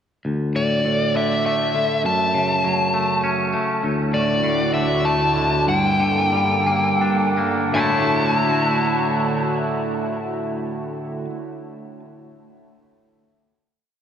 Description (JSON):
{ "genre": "post-rock", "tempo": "80-100 BPM", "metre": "3/4", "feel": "straight", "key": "D major", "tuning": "A4 = 440 Hz", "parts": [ { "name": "twangy electric guitar", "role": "arpeggios", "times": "0.2-11.3 s", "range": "D2 to E4", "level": "-22 LUFS", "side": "equal", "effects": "analog delay" }, { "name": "bluesy overdriven lead guitar", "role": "melody", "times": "0.6-11.2 s", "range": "D5 to A5", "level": "-21 LUFS", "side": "left 1 dB", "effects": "distortion, analog delay" }, { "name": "lush unison pad", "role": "sustained chords", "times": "3.8-11.2 s", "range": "D2 to A4", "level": "-25 LUFS", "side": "right 2 dB", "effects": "chorus, phaser" } ], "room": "wet lush hall reverb, RT60 3.1 s", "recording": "dreamy mix soaked in reverb", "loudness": "-18 LUFS", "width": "side -8 dB against mid", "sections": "0.2-7.7 A section; 7.7-12.2 final chord", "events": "slowing down 3.8-7.7", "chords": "0.2 Dsus2; 2.0 F#m; 3.8 Dadd9; 5.7 Gmadd9; 7.7 Dadd9" }